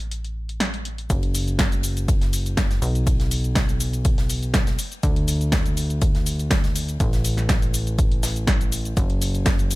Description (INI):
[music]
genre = piano house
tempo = 122 BPM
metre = 4/4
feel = straight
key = F# minor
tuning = A4 = 442 Hz
[part]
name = plucky analog bass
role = bass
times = 0.0-9.8 s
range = F#1 to D2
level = -24 LUFS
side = equal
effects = sidechain pumping
[part]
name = punchy analog drum machine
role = drums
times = 0.0-9.8 s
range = hi-hat, shaker, snare drum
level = -26 LUFS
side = equal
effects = none
[part]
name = electronic kick drum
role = drums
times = 1.1-9.6 s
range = none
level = -21 LUFS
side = equal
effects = none
[part]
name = natural country drum kit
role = drums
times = 1.1-9.8 s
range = ride cymbal, snare drum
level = -37 LUFS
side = left 1 dB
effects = high-pass filter on cymbals, high-pass filter on snare, high-pass filter on room
[sound]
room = small room ambience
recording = none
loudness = -19 LUFS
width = side -20 dB against mid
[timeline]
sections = 0.0-1.1 A section; 1.1-9.8 B section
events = drop 1.1-9.8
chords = none